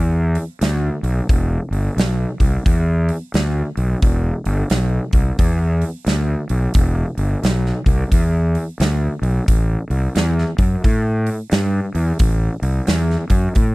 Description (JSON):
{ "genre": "blues rock power trio and southern rock", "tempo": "88 BPM", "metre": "4/4", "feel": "swing 62% on 8ths", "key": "E minor", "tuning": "A4 = 442 Hz", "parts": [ { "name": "fuzz fingered electric bass", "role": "bass", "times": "0.0-13.7 s", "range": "E1 to A2", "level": "-18 LUFS", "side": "equal", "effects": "overdrive" }, { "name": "big rock drum kit", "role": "drums", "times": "0.4-13.7 s", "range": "hi-hat, kick drum, snare drum", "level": "-18 LUFS", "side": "equal", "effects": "none" } ], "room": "little or no reverb", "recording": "dry, close 1970s-style studio recording", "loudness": "-16 LUFS", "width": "side -22 dB against mid", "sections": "0.0-13.7 A section", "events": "none", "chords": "none", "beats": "0.61 | 1.29 1.97 2.66 3.34 | 4.02 4.70 5.39 6.07 | 6.75 7.43 8.12 8.80 | 9.48 10.16 10.84 11.53 | 12.21 12.89 13.57" }